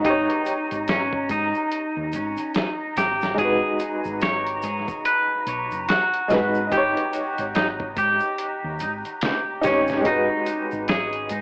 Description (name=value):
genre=trip hop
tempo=72 BPM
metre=4/4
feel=swing 60% on 16ths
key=G# minor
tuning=A4 = 439 Hz
part: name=clean electric guitar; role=melody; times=0.0-11.4 s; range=C#4 to C#5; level=-26 LUFS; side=equal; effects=tape echo
part: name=warm upright piano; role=accompaniment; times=0.0-11.4 s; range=G#3 to C#5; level=-28 LUFS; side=equal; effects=tremolo, tape echo
part: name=hollow-body short-scale fingered electric bass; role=bass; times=0.0-11.4 s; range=F#1 to G#2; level=-37 LUFS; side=equal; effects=none
part: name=dusty soul sampler-style drum kit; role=drums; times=0.0-11.4 s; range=hi-hat, kick drum, snare drum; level=-31 LUFS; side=equal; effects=overdrive, dub echo
part: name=tube shaker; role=percussion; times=0.0-11.4 s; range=none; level=-52 LUFS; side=equal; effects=none
part: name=flickering grainy texture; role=texture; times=0.0-11.4 s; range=A#5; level=-38 LUFS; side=equal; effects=built-in reverb
room=moderate echo chamber reverb, RT60 2.1 s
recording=echo-heavy mix, vinyl crackle, AM radio sound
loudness=-23 LUFS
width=mono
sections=0.0-11.4 A section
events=none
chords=0.0 D#7/G#; 3.4 G#m7; 6.7 D#7/G#; 10.0 G#m7